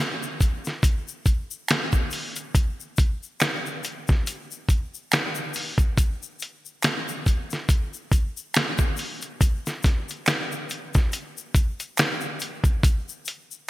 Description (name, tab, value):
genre	R&B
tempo	70 BPM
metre	4/4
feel	swing 58% on 16ths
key	none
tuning	none
part	dusty soul sampler-style drum kit	drums	0.0-13.5 s	finger snaps, hi-hat, kick drum, snare drum	-22 LUFS	equal	gated reverb
part	tube shaker and finger snaps	percussion	0.2-13.7 s	none	-32 LUFS	left 1 dB	none
room	light reverb, small room ambience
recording	bright 1980s-style digital production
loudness	-22 LUFS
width	side -17 dB against mid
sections	0.0-12.8 A section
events	none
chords	none